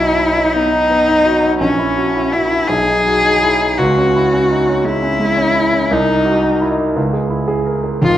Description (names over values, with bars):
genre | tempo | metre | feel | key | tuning
classical, romantic duo for cello and grand piano | 56 BPM (dotted quarters) | 6/8 | rubato | B major | A4 = 440 Hz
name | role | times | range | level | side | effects
rich cello | melody | 0.0-8.2 s | C#4 to G#4 | -14 LUFS | left 1 dB | none
warm grand piano | accompaniment | 0.0-8.2 s | Ab1 to A#4 | -16 LUFS | right 1 dB | none
room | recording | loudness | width
wet recital hall reverb, RT60 1.7 s | dark, warm production | -12 LUFS | side -12 dB against mid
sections
0.0-8.2 A section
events
none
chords
0.0 B; 1.6 F#7/A#; 2.7 B; 3.8 C#m; 5.9 Cdim; 7.0 C#m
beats
0.54 | 1.60 2.69 | 3.78 4.84 | 5.92 6.97 | 8.02